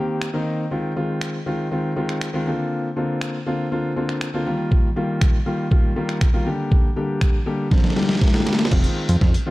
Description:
dance-pop; 120 BPM; 4/4; straight; A4 = 440 Hz
warm concert grand piano; accompaniment; 0.0-9.5 s; D3 to G4; -23 LUFS; left 1 dB; sidechain pumping
trip hop sampler-style drum kit; drums; 0.2-9.5 s; crash cymbal, finger snaps, hi-hat, kick drum, snare drum; -18 LUFS; equal
plucky analog bass; bass; 8.7-9.4 s; F1 to F2; -19 LUFS; equal; sidechain pumping
little or no reverb; -19 LUFS; side -18 dB against mid
0.0-8.7 A section
drum fill 7.7-8.7, 8.7-9.5
0.0 Cm7; 0.7 Ab6; 2.5 Bbadd9; 4.5 Ebadd9; 6.5 Gm; 8.7 Fm7
0.22 | 0.72 1.22 1.72 2.22 | 2.72 3.22 3.72 4.22 | 4.72 5.22 5.72 6.22 | 6.72 7.22 7.72 8.22 | 8.72 9.22

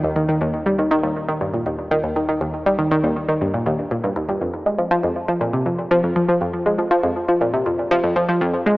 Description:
ambient, sequencer-driven space music; 120 BPM; 4/4; straight; A4 = 441 Hz
analog pluck; riff; 0.0-8.7 s; Eb2 to Ab3; -18 LUFS; equal; chorus, phaser, tape echo
fat analog bass; bass; 0.0-4.4 s; Eb1; -38 LUFS; equal; tube saturation
moderate plate reverb, RT60 3.1 s; cassette tape, small speaker sound; -18 LUFS; side -20 dB against mid
0.0-4.4 A section; 4.4-8.8 A section
0.0 Eb; 4.4 N.C.
| 0.41 0.91 1.41 1.91 | 2.41 2.91 3.41 3.91 | 4.41 4.91 5.41 5.91 | 6.41 6.91 7.41 7.91 | 8.41

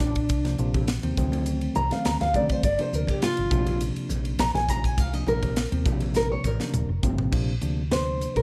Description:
electric jazz fusion; 103 BPM; 4/4; straight; Bb major; A4 = 440 Hz
nylon-string guitar; melody; 0.0-8.4 s; D4 to Bb5; -29 LUFS; equal
hollow-body short-scale fingered electric bass; bass; 0.0-8.4 s; D1 to D3; -30 LUFS; equal
crisp fusion drum kit; drums; 0.0-8.4 s; crash cymbal, hi-hat, kick drum, ride cymbal, snare drum, toms; -31 LUFS; equal
congas; percussion; 0.0-7.2 s; -37 LUFS; equal
bell-like tine electric piano; accompaniment; 0.4-8.4 s; C3 to D4; -32 LUFS; equal
light reverb; -25 LUFS; mono
0.0-7.3 A section; 7.3-8.4 B section
nylon-string guitar solo 0.0-7.3; drum fill 6.1-7.3
0.3 Cm9; 1.2 D7b9; 2.6 Gm7; 3.5 Bbadd9; 5.0 Cm9; 5.9 Bbmaj9; 7.3 Bbadd9
| 0.30 0.88 1.47 2.05 | 2.64 3.22 3.81 4.39 | 4.98 5.56 6.15 6.73 | 7.32 7.90

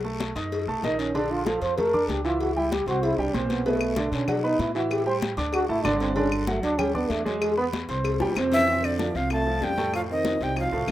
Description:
Afro-Cuban jazz; 191 BPM; 4/4; straight; A4 = 444 Hz
warm concert grand piano; accompaniment; 0.0-10.9 s; A2 to D#6; -28 LUFS; right 2 dB; plate reverb
upright bass; bass; 0.0-10.9 s; G1 to B2; -32 LUFS; left 1 dB
congas; percussion; 0.0-10.9 s; -34 LUFS; left 3 dB
cowbell and bongos; percussion; 0.2-10.9 s; -33 LUFS; left 6 dB
guiro; percussion; 0.2-10.9 s; -40 LUFS; left 6 dB
breathy trombone; second line; 0.8-10.9 s; D3 to C5; -27 LUFS; right 1 dB; plate reverb
claves; percussion; 3.8-10.9 s; -34 LUFS; left 6 dB
breathy bright jazz flute; melody; 8.5-10.9 s; D5 to A5; -26 LUFS; equal; slapback echo, plate reverb
moderate studio reverb, RT60 0.5 s; rough home demo mix; -22 LUFS; side -13 dB against mid
0.0-8.7 A section; 8.7-10.9 B section
trombone solo 0.0-8.7; drum fill 8.2-8.7
0.0 B7; 1.1 Bbmaj7; 2.4 C#dim; 3.0 C5; 3.7 Bm7; 4.9 A7sus4; 5.5 D5; 6.2 G5; 7.4 E; 8.1 C; 8.7 F6; 9.9 F7
0.20 0.52 0.83 | 1.15 1.46 1.77 2.09 | 2.40 2.72 3.03 3.34 | 3.66 3.97 4.28 4.60 | 4.91 5.23 5.54 5.85 | 6.17 6.48 6.79 7.11 | 7.42 7.74 8.05 8.37 | 8.68 8.99 9.31 9.62 | 9.94 10.25 10.57 10.88

